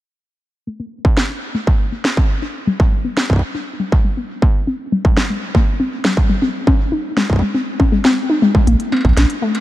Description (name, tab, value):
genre	IDM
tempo	120 BPM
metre	4/4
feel	straight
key	unclear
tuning	A4 = 437 Hz
part	warbly dusty pluck	arpeggios	0.7-9.5 s	G3 to Eb4	-18 LUFS	left 2 dB	chorus, cassette tape, tape echo
part	electronic kick drum	drums	1.0-9.1 s	none	-14 LUFS	right 1 dB	distortion
part	industrial drum kit	drums	1.2-9.6 s	hi-hat, snare drum, struck metal	-23 LUFS	equal	tape echo
part	warm sub bass	bass	8.7-9.3 s	Bb1	-13 LUFS	right 1 dB	none
room	light reverb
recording	dark, warm production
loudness	-14 LUFS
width	side -15 dB against mid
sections	0.7-9.6 A section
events	filter sweep on synth pluck 0.7-9.6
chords	0.7 Bbmaj9; 2.7 Csus2; 4.4 Abmaj9 (rootless); 6.4 Dbsus2; 8.7 Bbadd9